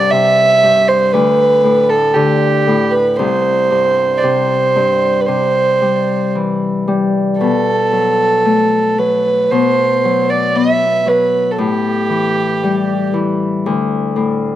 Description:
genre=celtic folk, Celtic slow air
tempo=58 BPM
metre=4/4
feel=rubato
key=unclear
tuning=A4 = 439 Hz
part: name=dark fiddle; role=melody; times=0.0-13.2 s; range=G4 to E5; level=-13 LUFS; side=right 2 dB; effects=none
part: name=Celtic harp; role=accompaniment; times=0.0-14.6 s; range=C2 to B3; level=-16 LUFS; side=left 3 dB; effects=none
room=little or no reverb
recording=recorded outdoors, with no room sound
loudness=-12 LUFS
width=side -12 dB against mid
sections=0.0-14.6 A section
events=none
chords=0.0 C5; 1.1 Gadd9/D; 3.2 C; 7.4 B5; 11.6 A5; 13.7 D5

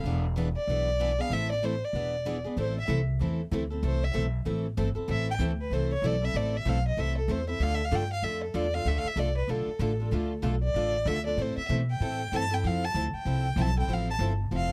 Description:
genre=acoustic string swing (jazz manouche)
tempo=191 BPM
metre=4/4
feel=swing 60% on 8ths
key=A minor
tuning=A4 = 440 Hz
part: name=warm violin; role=melody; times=0.0-14.7 s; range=A4 to A5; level=-34 LUFS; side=equal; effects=none
part: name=picked plugged-in steel-string acoustic guitar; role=accompaniment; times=0.0-14.7 s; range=D3 to B4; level=-38 LUFS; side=equal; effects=none
part: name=picked steel-string acoustic guitar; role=accompaniment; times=0.0-14.7 s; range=D3 to A4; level=-37 LUFS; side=equal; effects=none
part: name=upright bass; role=bass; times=0.0-14.7 s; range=E1 to B2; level=-32 LUFS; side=equal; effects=none
room=little or no reverb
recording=close, detailed microphones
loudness=-29 LUFS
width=mono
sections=0.0-2.6 A section; 2.6-14.7 B section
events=violin solo 2.6-14.7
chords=0.1 E7; 1.3 Am; 1.9 E7; 2.6 Am; 7.6 Dm; 11.4 Am; 12.6 Fmaj7

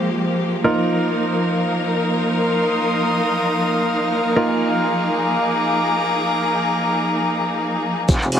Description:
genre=bass house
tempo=free time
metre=none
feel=none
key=unclear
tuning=A4 = 440 Hz
part: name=bright studio string section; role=sustained chords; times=0.0-8.4 s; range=F3 to Bb4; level=-20 LUFS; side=left 1 dB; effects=sidechain pumping
part: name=clear concert grand piano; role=stabs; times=0.0-8.1 s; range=Ab3 to Bb4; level=-23 LUFS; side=right 2 dB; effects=sidechain pumping, low-pass filter, dub echo
part: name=airy breathy pad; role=texture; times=0.0-8.4 s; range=F4 to Eb6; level=-22 LUFS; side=equal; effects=chorus, sidechain pumping
part: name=metallic wobble bass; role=bass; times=8.1-8.4 s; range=F1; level=-18 LUFS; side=equal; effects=chorus, tube saturation, sidechain pumping, high-pass filter
part: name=electronic kick drum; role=drums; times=8.1-8.2 s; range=none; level=-17 LUFS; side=equal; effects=small room reverb
part: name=shekere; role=percussion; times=8.1-8.3 s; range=none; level=-30 LUFS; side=left 3 dB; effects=none
part: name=electronic hi-hat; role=drums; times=8.3-8.4 s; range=none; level=-23 LUFS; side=right 2 dB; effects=small room reverb
room=moderate plate reverb, RT60 1.6 s, small room reverb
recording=none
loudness=-17 LUFS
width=side -9 dB against mid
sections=0.0-8.1 A section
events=none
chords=0.0 Fmadd9; 0.6 Bbsus4

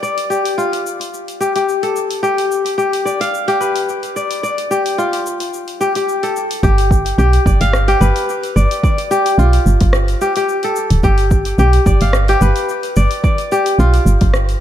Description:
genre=organic downtempo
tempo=109 BPM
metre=4/4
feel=swing 54% on 16ths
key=G mixolydian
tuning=A4 = 439 Hz
part: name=kora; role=arpeggios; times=0.0-14.6 s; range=F4 to F5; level=-16 LUFS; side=left 2 dB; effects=ping-pong delay
part: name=deep house drum kit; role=drums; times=0.0-14.6 s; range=hi-hat, rim click, shaker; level=-25 LUFS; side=left 1 dB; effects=none
part: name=woody FM bass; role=bass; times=6.6-14.6 s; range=D1 to B1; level=-13 LUFS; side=right 1 dB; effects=tube saturation, sidechain pumping
part: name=electronic kick drum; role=drums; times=6.6-14.3 s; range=none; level=-14 LUFS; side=right 1 dB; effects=none
room=light reverb, digital ambience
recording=dark, warm production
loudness=-13 LUFS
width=side -11 dB against mid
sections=0.0-6.6 A section; 6.6-14.6 B section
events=none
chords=0.0 G7

